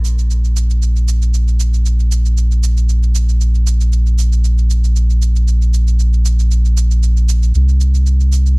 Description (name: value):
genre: dub techno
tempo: 116 BPM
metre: 4/4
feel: swing 54% on 16ths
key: unclear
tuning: A4 = 440 Hz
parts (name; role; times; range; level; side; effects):
- soft dub sub bass; bass; 0.0-8.6 s; Bb1 to C2; -11 LUFS; equal; none
- cabasa; drums; 0.0-8.6 s; none; -29 LUFS; right 11 dB; none
room: little or no reverb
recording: echo-heavy mix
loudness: -11 LUFS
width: side -30 dB against mid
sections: 0.0-8.6 A section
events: none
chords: none